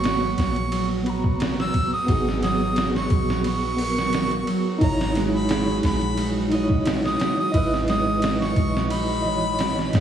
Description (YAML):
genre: trip hop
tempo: 88 BPM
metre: 4/4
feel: swing 53% on 16ths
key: G# minor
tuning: A4 = 442 Hz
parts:
  - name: clear harmonica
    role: melody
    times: 0.0-10.0 s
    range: A#5 to E6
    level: -27 LUFS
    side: equal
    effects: tape echo
  - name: mellow tine electric piano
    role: accompaniment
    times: 0.0-10.0 s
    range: E3 to A#5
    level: -26 LUFS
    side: right 1 dB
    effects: tremolo, tape echo
  - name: string machine, cellos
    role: sustained chords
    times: 0.0-10.0 s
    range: F#4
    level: -31 LUFS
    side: right 2 dB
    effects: ensemble chorus, vintage 12-bit sampler grit
  - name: Celtic harp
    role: arpeggios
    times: 0.0-10.0 s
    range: F#3 to D#5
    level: -29 LUFS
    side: right 2 dB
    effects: digital delay
  - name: soft 808-style bass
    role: bass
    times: 0.0-10.0 s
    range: G#1 to E2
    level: -28 LUFS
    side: equal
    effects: tube saturation
  - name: trip hop sampler-style drum kit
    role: drums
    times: 0.0-10.0 s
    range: hi-hat, kick drum, ride cymbal, snare drum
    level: -26 LUFS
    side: right 1 dB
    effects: none
room: light reverb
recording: vinyl crackle, small room reverb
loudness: -20 LUFS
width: side -9 dB against mid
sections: 0.0-10.0 A section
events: none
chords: 0.0 G#m7; 4.8 C#madd9/G#